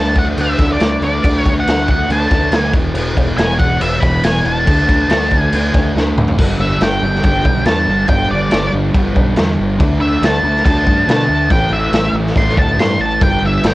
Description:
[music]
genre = garage rock duo or trio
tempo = 140 BPM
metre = 4/4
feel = straight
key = unclear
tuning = A4 = 437 Hz
[part]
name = octave-fuzz lead guitar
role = melody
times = 0.0-13.7 s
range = D5 to C6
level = -17 LUFS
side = equal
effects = distortion, cassette tape
[part]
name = thick fuzz guitar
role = riff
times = 0.0-13.7 s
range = E2 to D4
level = -18 LUFS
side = equal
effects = distortion, cassette tape
[part]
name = growling fingered electric bass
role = bass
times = 0.0-13.7 s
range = E1 to B2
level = -20 LUFS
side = equal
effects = overdrive, tube saturation
[part]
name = raw garage drum kit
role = drums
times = 0.2-13.7 s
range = crash cymbal, kick drum, snare drum, toms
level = -16 LUFS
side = equal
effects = cassette tape
[sound]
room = little or no reverb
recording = home recording on cassette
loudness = -12 LUFS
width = side -18 dB against mid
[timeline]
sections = 0.0-6.4 A section; 6.4-13.7 B section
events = drum fill 6.0-6.4; lead electric guitar solo 6.4-13.7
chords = 0.0 D5; 2.7 E5; 4.7 D5; 6.4 G5; 9.8 D5; 11.5 A5; 13.2 G5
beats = 0.38 0.81 | 1.24 1.67 2.10 2.53 | 2.96 3.39 3.82 4.25 | 4.68 5.11 5.53 5.96 | 6.39 6.82 7.25 7.67 | 8.10 8.53 8.95 9.38 | 9.81 10.23 10.66 11.09 | 11.51 11.94 12.37 12.79 | 13.22 13.64

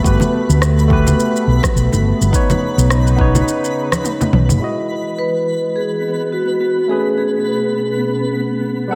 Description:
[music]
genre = sunset chillout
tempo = 105 BPM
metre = 4/4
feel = swing 57% on 16ths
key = E major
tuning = A4 = 442 Hz
[part]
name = barky tine electric piano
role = accompaniment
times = 0.0-8.9 s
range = G3 to F#5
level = -24 LUFS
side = equal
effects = delay
[part]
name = lush unison pad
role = sustained chords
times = 0.0-8.9 s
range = B2 to F#5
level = -26 LUFS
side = equal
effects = chorus, tremolo
[part]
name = fingered electric bass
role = bass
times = 0.0-4.6 s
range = F#1 to D2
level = -16 LUFS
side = equal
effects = none
[part]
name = electronic kick drum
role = drums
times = 0.0-3.3 s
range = none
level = -20 LUFS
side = equal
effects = none
[part]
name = twinkling granular texture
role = texture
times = 0.0-8.9 s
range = B3 to B6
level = -29 LUFS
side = equal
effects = built-in reverb
[part]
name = deep house drum kit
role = drums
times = 0.1-4.6 s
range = rim click, shaker, toms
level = -24 LUFS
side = equal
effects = none
[part]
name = congas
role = percussion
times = 0.2-4.3 s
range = none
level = -24 LUFS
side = equal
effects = none
[part]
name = vibraphone with medium mallets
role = melody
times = 5.2-8.3 s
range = F#4 to B4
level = -21 LUFS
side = equal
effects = delay
[sound]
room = moderate concert hall reverb, RT60 2.3 s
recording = none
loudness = -16 LUFS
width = mono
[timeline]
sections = 0.0-4.6 A section; 4.6-8.9 B section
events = drum fill 4.0-4.6; filter sweep on analog synth pad 4.6-8.9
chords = 0.0 Gmaj9; 2.3 Badd9; 4.6 Emaj9; 6.9 Amaj9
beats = | 0.04 0.62 1.19 1.76 | 2.33 2.90 3.47 4.04 | 4.62 5.19 5.76 6.33 | 6.90 7.47 8.04 8.62

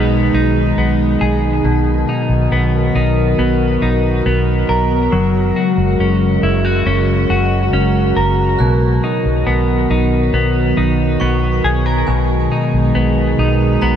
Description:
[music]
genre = dream pop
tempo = 69 BPM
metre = 4/4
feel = straight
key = B major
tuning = A4 = 440 Hz
[part]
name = warbly tape-like pad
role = sustained chords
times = 0.0-14.0 s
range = B2 to A#4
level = -17 LUFS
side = right 1 dB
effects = chorus, built-in reverb
[part]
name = semi-hollow electric guitar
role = arpeggios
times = 0.0-14.0 s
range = B2 to A#4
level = -18 LUFS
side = left 2 dB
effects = lush chorus, digital delay
[part]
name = vintage muted fingered electric bass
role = bass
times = 0.0-14.0 s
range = F#1 to B1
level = -16 LUFS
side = equal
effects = none
[part]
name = glockenspiel with brass mallets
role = texture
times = 8.6-14.0 s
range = G#5 to F#6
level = -30 LUFS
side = right 4 dB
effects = stereo widening, digital delay
[sound]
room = moderate shimmer reverb, RT60 5.1 s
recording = dark, warm production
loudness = -12 LUFS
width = side -9 dB against mid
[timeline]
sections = 0.0-14.0 A section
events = none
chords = 0.0 G#m/B; 1.6 Bmaj7; 5.1 F#add9; 8.6 Bmaj7; 12.1 G#m/B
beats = 0.78 | 1.65 2.52 3.38 4.25 | 5.12 5.99 6.86 7.73 | 8.60 9.47 10.34 11.21 | 12.08 12.95 13.82

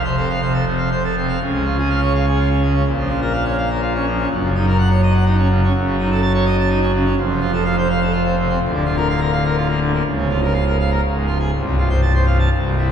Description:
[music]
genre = classical, organ toccata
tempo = 125 BPM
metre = 3/4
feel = straight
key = F major from 7.2 s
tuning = A4 = 439 Hz
[part]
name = pipe organ, full organ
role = solo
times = 0.0-12.9 s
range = C1 to A5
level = -15 LUFS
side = equal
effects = none
[sound]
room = wet church reverb, RT60 2.7 s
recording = recorded in a church or concert hall, small room ambience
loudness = -15 LUFS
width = side -8 dB against mid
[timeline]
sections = 0.0-1.4 A section; 1.4-12.9 B section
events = none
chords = 0.0 F; 1.4 Db; 2.9 Bbm; 4.3 Ebm7/Gb; 5.7 Ebm7b5/Gb; 7.2 F; 8.6 Bb/D; 10.1 Bbm/Db; 11.0 Db; 11.5 F/C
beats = 0.42 0.92 | 1.42 1.90 2.39 | 2.87 3.34 3.82 | 4.30 4.78 5.26 | 5.74 6.22 6.69 | 7.17 7.65 8.13 | 8.61 9.09 9.57 | 10.05 10.54 11.03 | 11.52 12.02 12.51

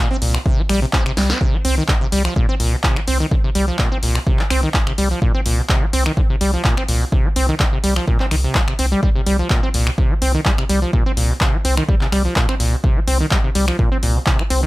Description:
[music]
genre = acid house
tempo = 126 BPM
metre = 4/4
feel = swing 53% on 16ths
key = C minor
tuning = A4 = 441 Hz
[part]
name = liquid acid bass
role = riff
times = 0.0-14.7 s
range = Bb2 to C4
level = -21 LUFS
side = equal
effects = chorus, vintage 12-bit sampler grit, sidechain pumping, tape echo
[part]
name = round analog bass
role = bass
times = 0.2-14.7 s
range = Bb1 to C2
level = -19 LUFS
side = equal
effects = sidechain pumping
[part]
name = punchy analog drum machine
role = drums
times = 0.2-14.6 s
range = finger snaps, handclaps, hi-hat, snare drum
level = -23 LUFS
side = left 1 dB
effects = none
[part]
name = electronic kick drum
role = drums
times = 0.5-14.4 s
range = none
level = -18 LUFS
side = equal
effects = none
[sound]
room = light reverb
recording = none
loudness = -15 LUFS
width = side -19 dB against mid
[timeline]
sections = 0.0-14.7 A section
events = drum fill 1.2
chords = 0.0 C7(no3)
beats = 0.46 0.93 | 1.41 1.89 2.36 2.84 | 3.31 3.79 4.27 4.74 | 5.22 5.70 6.17 6.65 | 7.12 7.60 8.08 8.55 | 9.03 9.51 9.98 10.46 | 10.93 11.41 11.89 12.36 | 12.84 13.31 13.79 14.27

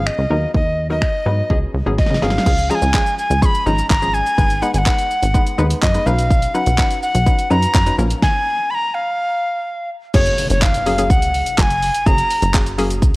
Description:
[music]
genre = dance-pop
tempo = 125 BPM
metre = 4/4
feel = straight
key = unclear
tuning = A4 = 438 Hz
[part]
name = breathy alto recorder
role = melody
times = 0.0-12.5 s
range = Db5 to Db6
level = -19 LUFS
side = equal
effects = none
[part]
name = hollow square pluck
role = accompaniment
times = 0.0-13.2 s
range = F3 to B4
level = -24 LUFS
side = left 2 dB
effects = chorus, sidechain pumping
[part]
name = plucky analog bass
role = bass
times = 0.0-13.2 s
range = Gb1 to Db3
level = -19 LUFS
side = equal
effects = sidechain pumping
[part]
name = pop drum kit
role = drums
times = 0.1-13.1 s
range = crash cymbal, finger snaps, handclaps, hi-hat, kick drum, shaker, snare drum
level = -17 LUFS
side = equal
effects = none
[part]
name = impact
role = sound effects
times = 10.2-12.1 s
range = none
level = -29 LUFS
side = equal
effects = none
[part]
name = group handclap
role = percussion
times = 10.6-12.7 s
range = none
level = barely audible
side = none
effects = none
[sound]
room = light reverb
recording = worn, warbling old tape, cassette tape, warbly pitch drift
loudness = -14 LUFS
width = side -22 dB against mid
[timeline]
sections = 0.0-2.5 A section; 2.5-10.1 B section; 10.1-13.2 C section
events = drum fill 2.0-2.5; stop 8.2-10.1; impact 10.1-12.1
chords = 0.3 Bmaj7/D#; 1.5 Db7sus4; 2.5 Db; 4.4 Abm; 6.1 Badd9; 8.0 Bbm; 10.1 Gbadd9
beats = 0.06 | 0.54 1.02 1.50 1.98 | 2.46 2.94 3.42 3.90 | 4.38 4.86 5.34 5.82 | 6.30 6.78 7.26 7.74 | 8.22 8.70 9.18 9.66 | 10.14 10.62 11.10 11.58 | 12.06 12.54 13.02

